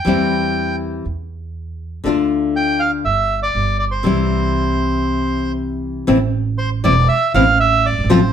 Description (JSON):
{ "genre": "tango", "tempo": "120 BPM", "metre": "4/4", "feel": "rubato", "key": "C major", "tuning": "A4 = 440 Hz", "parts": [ { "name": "bandoneon", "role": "melody", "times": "0.0-8.3 s", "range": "C5 to G5", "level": "-18 LUFS", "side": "right 2 dB", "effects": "none" }, { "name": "nylon-string guitar", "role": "accompaniment", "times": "0.0-8.2 s", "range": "C3 to F4", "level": "-17 LUFS", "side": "left 3 dB", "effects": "none" }, { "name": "upright bass", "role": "bass", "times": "0.1-8.3 s", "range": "E1 to E2", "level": "-21 LUFS", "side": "right 2 dB", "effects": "none" } ], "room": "moderate studio reverb, RT60 0.8 s", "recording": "band playing live in one room", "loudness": "-15 LUFS", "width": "side -8 dB against mid", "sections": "0.0-6.1 A section; 6.1-8.3 B section", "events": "none", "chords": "0.1 C/E; 1.1 N.C.; 2.1 Dm; 3.0 G5; 4.0 C; 6.1 Am" }